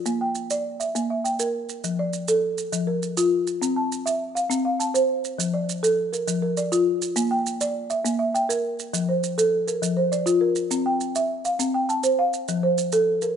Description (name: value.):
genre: southern african traditional, mbira-style interlocking cycle.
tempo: 135 BPM (dotted quarters).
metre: 12/8.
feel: straight.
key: F major.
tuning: A4 = 440 Hz.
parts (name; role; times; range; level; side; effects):
folk marimba with medium mallets; arpeggios; 0.1-13.4 s; F3 to A5; -22 LUFS; equal; none.
maracas; percussion; 0.1-13.4 s; none; -30 LUFS; right 9 dB; none.
room: moderate lush hall reverb, RT60 2.4 s.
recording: rough home demo mix, nothing above 11.0 kHz.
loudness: -21 LUFS.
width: side -8 dB against mid.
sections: 0.0-8.9 A section; 8.9-13.4 A section.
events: none.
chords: 0.1 Bb; 1.8 F; 3.6 C; 5.4 F; 7.2 Bb; 8.9 F; 10.7 C; 12.5 F.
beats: | 0.07 0.51 0.95 1.40 | 1.84 2.29 2.73 3.17 | 3.62 4.06 4.50 4.95 | 5.39 5.84 6.28 6.72 | 7.17 7.61 8.05 8.50 | 8.94 9.38 9.82 10.27 | 10.71 11.15 11.60 12.04 | 12.48 12.93.